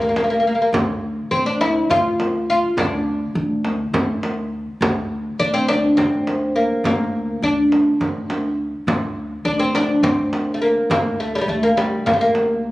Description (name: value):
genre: Turkish makam ensemble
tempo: 206 BPM (eighths)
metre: 7/8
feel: straight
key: D makam ussak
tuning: A4 = 439 Hz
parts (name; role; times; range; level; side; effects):
- oud; melody; 0.0-12.7 s; G3 to F4; -18 LUFS; equal; none
- upright bass; bass; 0.0-12.7 s; D2; -25 LUFS; equal; none
- frame drum; percussion; 0.2-12.5 s; none; -23 LUFS; right 1 dB; none
room: light reverb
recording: recorded on a phone in the room, club reverb, compression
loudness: -17 LUFS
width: side -18 dB against mid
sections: 0.0-8.9 A section; 8.9-12.7 A section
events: none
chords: none